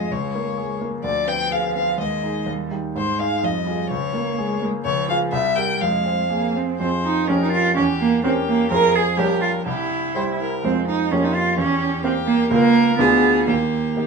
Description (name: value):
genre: quick classical-period movement for piano trio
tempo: 125 BPM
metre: 2/4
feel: rubato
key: F minor from 4.8 s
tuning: A4 = 442 Hz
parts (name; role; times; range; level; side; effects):
- warm violin; melody; 0.0-14.1 s; F4 to G5; -24 LUFS; left 6 dB; none
- rich cello; second line; 0.0-14.1 s; F3 to Bb4; -21 LUFS; right 5 dB; none
- clear grand piano; accompaniment; 0.0-14.1 s; Bb1 to Db5; -23 LUFS; equal; none
room: light reverb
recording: none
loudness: -18 LUFS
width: side -4 dB against mid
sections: 0.0-6.8 A section; 6.8-14.1 B section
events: none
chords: 0.1 Bbm7/Db; 1.0 Ddim7; 2.0 Ab5/Eb; 2.5 Eb; 3.0 Ab; 3.4 Fm; 3.9 Bbm7/Db; 4.8 Db; 5.3 C7; 5.8 Fm; 7.3 Gm7b5/F; 7.8 Edim7; 8.7 Fm; 9.2 Gdim/Bb; 9.7 C; 10.6 Fm; 11.1 Gm7b5/F; 11.6 Edim7; 12.5 Bbm/Db; 13.0 Ddim7; 13.5 Eb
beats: | 0.10 0.57 | 1.03 1.51 | 1.99 2.47 | 2.95 3.43 | 3.91 4.38 | 4.84 5.32 | 5.81 6.30 | 6.79 7.28 | 7.76 8.23 | 8.71 9.18 | 9.66 10.15 | 10.64 11.12 | 11.58 12.04 | 12.51 12.99 | 13.48 13.98